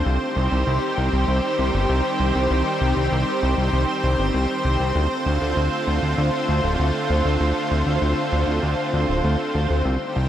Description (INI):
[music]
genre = synthwave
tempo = 98 BPM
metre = 4/4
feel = straight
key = D phrygian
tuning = A4 = 440 Hz
[part]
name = lush unison pad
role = sustained chords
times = 0.0-10.3 s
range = D3 to C5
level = -22 LUFS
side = equal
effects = chorus
[part]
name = fat analog bass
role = bass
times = 0.0-10.3 s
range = D1 to D2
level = -21 LUFS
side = equal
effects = none
[sound]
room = light reverb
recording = none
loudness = -19 LUFS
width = side -11 dB against mid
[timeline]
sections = 0.0-10.3 A section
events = none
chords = 0.1 Cm; 5.0 Dm7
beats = | 0.06 0.67 1.28 1.89 | 2.51 3.12 3.73 4.34 | 4.96 5.57 6.18 6.79 | 7.40 8.02 8.63 9.24 | 9.85